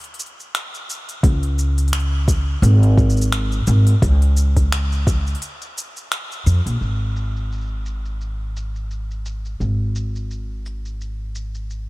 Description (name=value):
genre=folktronica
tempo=86 BPM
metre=4/4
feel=swing 56% on 16ths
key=unclear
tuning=A4 = 440 Hz
part: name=organic electronic drum kit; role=drums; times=0.0-11.9 s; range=finger snaps, hi-hat, shaker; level=-28 LUFS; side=equal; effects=overdrive, low-pass filter on perc, small room ambience, low-pass filter on hats, low-pass filter on snare
part: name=upright bass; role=bass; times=1.2-11.9 s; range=Ab1 to F2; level=-18 LUFS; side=equal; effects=none
part: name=electronic kick drum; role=drums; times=1.2-5.2 s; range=none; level=-17 LUFS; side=equal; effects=overdrive, small room ambience
room=digital ambience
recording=none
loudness=-17 LUFS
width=side -21 dB against mid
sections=0.0-6.8 A section; 6.8-11.9 B section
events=none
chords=none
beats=0.54 | 1.23 1.93 2.63 3.33 | 4.02 4.72 5.42 6.12 | 6.82 7.51 8.21 8.91 | 9.61 10.30 11.00 11.70